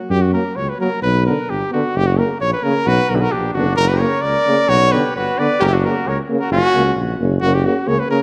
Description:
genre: balkan folk.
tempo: 131 BPM.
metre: 2/4.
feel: straight.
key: unclear.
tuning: A4 = 440 Hz.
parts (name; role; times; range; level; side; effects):
warm cornet; melody; 0.1-8.2 s; F#4 to D5; -21 LUFS; equal; none.
mellow tuba; bass; 0.1-8.0 s; F#1 to F#2; -21 LUFS; equal; none.
clear trombone; accompaniment; 0.3-8.2 s; C#3 to F#3; -26 LUFS; equal; none.
dark French horn; accompaniment; 0.3-8.2 s; A#3 to B3; -27 LUFS; equal; none.
clear flugelhorn; second line; 2.9-6.9 s; C#4 to B4; -27 LUFS; equal; none.
room: wet recital hall reverb, RT60 1.7 s.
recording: none.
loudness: -17 LUFS.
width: mono.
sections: 0.1-7.4 A section.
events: none.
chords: 0.1 F#; 1.0 Bm; 1.9 F#; 2.9 Bm; 3.8 F#; 4.7 Bm; 5.6 F#.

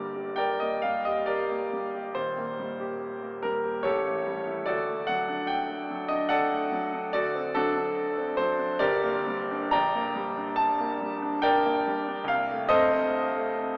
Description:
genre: classical, romantic character piece for solo piano.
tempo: 71 BPM.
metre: 3/4.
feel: uneven beats, rubato.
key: G minor.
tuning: A4 = 440 Hz.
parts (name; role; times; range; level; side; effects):
clear concert grand piano; solo; 0.0-13.8 s; Eb1 to Bb5; -28 LUFS; equal; none.
room: wet cathedral reverb, RT60 6.0 s.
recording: in a vast, echoing space, AM radio sound.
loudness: -28 LUFS.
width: mono.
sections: 0.0-13.8 A section.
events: none.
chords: 0.0 Gm; 2.2 Eb; 3.9 A7; 4.7 D; 7.1 D7; 8.8 Gm; 9.7 Gm/Bb; 12.3 Adim/C.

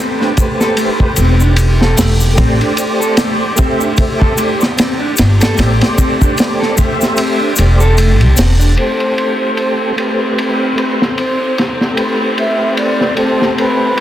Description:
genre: trip hop.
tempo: 75 BPM.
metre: 4/4.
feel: swing 58% on 16ths.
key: A minor.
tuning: A4 = 441 Hz.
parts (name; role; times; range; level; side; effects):
tonewheel organ; accompaniment; 0.0-14.0 s; A3 to E5; -17 LUFS; equal; chorus vibrato, slow rotary speaker, tremolo, vintage 12-bit sampler grit, tape echo.
electric guitar at the edge of break-up; arpeggios; 0.0-8.7 s; A3 to A4; -19 LUFS; right 1 dB; digital delay.
bowed-like drone; texture; 0.0-14.0 s; G4 to A4; -27 LUFS; right 1 dB; none.
crunchy breakbeat drum kit; drums; 0.2-14.0 s; hi-hat, kick drum, ride cymbal, snare drum; -16 LUFS; equal; low-pass filter on kick, low-pass filter on cymbals, low-pass filter on hats, low-pass filter on snare, low-pass filter on room.
egg shaker; percussion; 0.4-8.7 s; none; -23 LUFS; left 4 dB; none.
upright bass; bass; 1.2-8.7 s; E1 to C2; -10 LUFS; equal; none.
breathy mellow concert flute; melody; 8.8-14.0 s; B4 to E5; -19 LUFS; equal; dub echo.
clear symphonic string section; sustained chords; 8.8-14.0 s; C4; -19 LUFS; left 1 dB; none.
room: light reverb, studio ambience.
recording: dense, heavily limited modern master.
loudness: -10 LUFS.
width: side -12 dB against mid.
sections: 0.0-8.8 A section; 8.8-14.0 B section.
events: kick drops out 7.2-8.8.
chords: 0.0 Am9; 2.4 Csus2; 8.8 Am9.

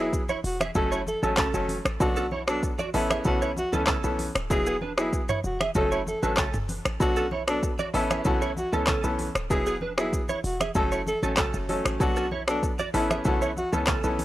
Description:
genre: afrobeats.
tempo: 96 BPM.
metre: 4/4.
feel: straight.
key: unclear.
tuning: A4 = 437 Hz.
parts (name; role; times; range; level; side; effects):
breathy alto saxophone; melody; 0.0-13.7 s; D4 to A4; -31 LUFS; equal; analog delay.
bright grand piano; accompaniment; 0.0-14.2 s; E3 to A4; -28 LUFS; left 1 dB; none.
short 808-style bass; bass; 0.0-14.2 s; D1 to C#2; -32 LUFS; equal; none.
afro-pop drum kit; drums; 0.1-14.2 s; finger snaps, handclaps, hi-hat, kick drum, rim click, shaker, toms; -28 LUFS; equal; none.
direct-recorded clean electric guitar; riff; 0.3-14.1 s; B3 to E5; -32 LUFS; right 4 dB; ensemble chorus, analog delay.
congas; percussion; 0.3-14.2 s; none; -37 LUFS; left 1 dB; none.
room: little or no reverb.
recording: dry, gritty hardware recording, transformer saturation.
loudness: -23 LUFS.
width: side -15 dB against mid.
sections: 0.0-7.0 A section; 7.0-14.2 A section.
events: none.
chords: 0.0 Eadd9; 0.8 F#m; 2.0 Bm7; 2.9 Aadd9; 4.5 Eadd9; 5.8 F#m; 7.0 Bm7; 7.9 Aadd9; 9.5 Eadd9; 10.8 F#m; 12.0 Bm7; 12.9 Aadd9.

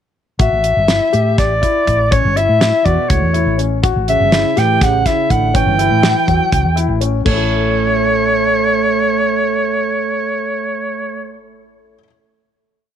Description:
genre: progressive instrumental, band music in an uneven meter.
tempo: 246 BPM (eighths).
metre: 7/8.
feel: straight.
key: A mixolydian.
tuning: A4 = 440 Hz.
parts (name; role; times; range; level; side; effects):
mellow soprano saxophone; melody; 0.4-11.4 s; C#5 to G5; -16 LUFS; left 1 dB; none.
dark baby grand piano; arpeggios; 0.4-12.1 s; F#3 to A4; -22 LUFS; left 13 dB; none.
woody fretless electric bass; bass; 0.4-11.9 s; G1 to A2; -18 LUFS; equal; none.
damped 70s drum kit; drums; 0.4-7.4 s; crash cymbal, hi-hat, kick drum, snare drum; -18 LUFS; right 1 dB; none.
breathy trombone; second line; 2.8-11.4 s; A2 to A3; -21 LUFS; right 13 dB; tape echo.
room: light reverb, small room ambience.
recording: 1960s-style stereo with parts hard left and right.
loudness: -12 LUFS.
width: side -9 dB against mid.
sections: 0.4-7.3 groove; 7.3-10.7 final chord.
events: none.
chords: 0.4 A7; 7.3 A.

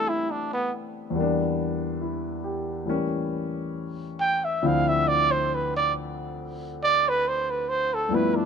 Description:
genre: jazz.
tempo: 69 BPM.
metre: 4/4.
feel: swing 66% on 8ths.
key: unclear.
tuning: A4 = 440 Hz.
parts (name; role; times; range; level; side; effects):
breathy trumpet; melody; 0.0-8.5 s; B3 to G5; -23 LUFS; right 3 dB; none.
warm grand piano; accompaniment; 0.0-8.5 s; D2 to G4; -27 LUFS; left 3 dB; none.
room: light reverb.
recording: minimal, uncompressed stereo recording.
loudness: -23 LUFS.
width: side -6 dB against mid.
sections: 0.0-8.5 A section.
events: trumpet solo 0.0-8.5.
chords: 0.0 Am11; 1.1 Em7b5; 2.9 A7b9; 4.6 Dm9.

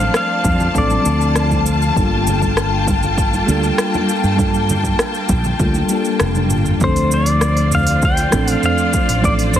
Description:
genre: sunset chillout.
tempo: 99 BPM.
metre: 4/4.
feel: straight.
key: G minor.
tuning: A4 = 440 Hz.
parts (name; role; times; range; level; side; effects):
pedal steel guitar; melody; 0.0-1.6, 6.8-9.6 s; C5 to G5; -20 LUFS; left 1 dB; ping-pong delay.
mellow FM electric piano; accompaniment; 0.0-9.6 s; F3 to A4; -20 LUFS; moving between left 5 dB and right 5 dB; chorus, auto-pan, ping-pong delay.
clear symphonic string section; sustained chords; 0.0-9.6 s; Bb3 to A5; -22 LUFS; left 3 dB; none.
mellow fretless electric bass; bass; 0.0-9.6 s; F1 to G2; -18 LUFS; equal; none.
deep house drum kit; drums; 0.0-9.6 s; hi-hat, rim click, shaker, toms; -22 LUFS; right 1 dB; none.
congas; percussion; 0.0-6.5 s; none; -26 LUFS; right 2 dB; none.
electronic kick drum; drums; 0.4-9.4 s; none; -20 LUFS; equal; none.
room: light reverb.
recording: heavily compressed radio sound, multiband compression.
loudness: -14 LUFS.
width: side -10 dB against mid.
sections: 0.0-6.8 A section; 6.8-9.6 B section.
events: kick drops out 6.2-6.8; drum fill 6.4-6.8.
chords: 0.0 Dm7; 2.0 Gm9; 6.8 Dm7.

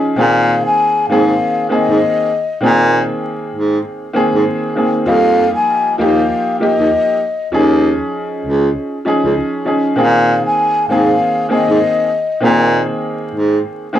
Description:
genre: hip hop.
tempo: 98 BPM.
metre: 4/4.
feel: swing 61% on 16ths.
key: Bb minor.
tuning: A4 = 443 Hz.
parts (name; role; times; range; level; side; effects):
clear upright piano; accompaniment; 0.0-14.0 s; Eb3 to Ab4; -16 LUFS; equal; cassette tape, high-pass filter, low-pass filter.
breathy mellow concert flute; melody; 0.2-12.4 s; Eb5 to Ab5; -16 LUFS; left 3 dB; high-pass filter, low-pass filter, analog delay.
dark baritone saxophone; bass; 0.2-13.6 s; Db2 to Bb2; -14 LUFS; right 1 dB; transformer saturation.
room: small room ambience.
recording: dry, gritty hardware recording, vinyl crackle.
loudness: -12 LUFS.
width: side -11 dB against mid.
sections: 0.0-10.0 A section; 10.0-14.0 A section.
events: break 0.0.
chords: 0.2 Bb9sus4; 5.1 F9sus4; 7.5 Eb9sus4; 10.0 Bb9sus4.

